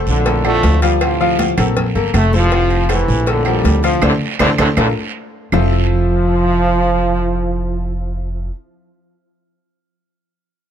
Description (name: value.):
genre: latin, salsa.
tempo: 160 BPM.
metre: 4/4.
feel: straight.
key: F major.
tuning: A4 = 440 Hz.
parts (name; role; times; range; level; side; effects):
clear grand piano; accompaniment; 0.0-8.5 s; F3 to F5; -20 LUFS; left 3 dB; none.
bright trombone section; melody; 0.1-8.5 s; F2 to A3; -18 LUFS; right 1 dB; none.
upright bass; bass; 0.1-8.5 s; F1 to D2; -17 LUFS; equal; none.
congas; percussion; 0.1-5.6 s; none; -24 LUFS; equal; none.
guiro; percussion; 0.1-5.6 s; none; -29 LUFS; right 8 dB; none.
agogo bells and timbales; percussion; 0.3-5.6 s; none; -25 LUFS; right 7 dB; none.
cowbell and bongos; percussion; 0.3-5.6 s; none; -24 LUFS; left 4 dB; none.
claves; percussion; 0.4-5.6 s; none; -23 LUFS; right 8 dB; none.
room: little or no reverb.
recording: close, detailed microphones.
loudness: -13 LUFS.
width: side -9 dB against mid.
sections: 0.0-5.5 A section; 5.5-8.5 B section.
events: band accent 4.0-5.5; drum fill 4.4-5.5.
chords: 0.3 Bbmaj7; 1.0 Dm7; 1.8 Bb5; 2.5 Fmaj7; 3.3 Bbmaj7; 4.0 D5; 4.8 Bbmaj7(no3); 5.5 Fmaj7.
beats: 0.26 0.64 | 1.01 1.39 1.77 2.14 | 2.52 2.90 3.27 3.65 | 4.02 4.40 4.78 5.15 | 5.53 5.90 6.28 6.66 | 7.03 7.41 7.78 8.16.